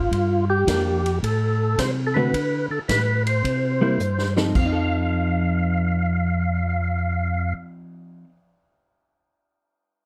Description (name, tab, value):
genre	soul jazz organ trio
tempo	108 BPM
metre	4/4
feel	swing 68% on 8ths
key	F mixolydian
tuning	A4 = 438 Hz
part	percussive tonewheel organ	melody	0.0-7.5 s	F4 to F5	-27 LUFS	equal	slow rotary speaker, overdrive, chorus vibrato
part	mellow tonewheel organ	bass	0.0-7.5 s	F2 to D3	-26 LUFS	equal	slow rotary speaker
part	swinging big-band drum kit	drums	0.1-6.7 s	crash cymbal, cymbal swell, hi-hat, kick drum, ride cymbal, snare drum	-31 LUFS	equal	none
part	hollow-body jazz guitar	accompaniment	0.7-8.4 s	D3 to A4	-28 LUFS	equal	none
room	light reverb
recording	dark, warm production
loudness	-22 LUFS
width	mono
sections	0.0-4.6 A section; 4.6-6.8 B section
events	drum fill 4.0-4.6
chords	0.1 Gm7; 1.2 Am; 2.3 D5; 3.4 C7; 4.6 F7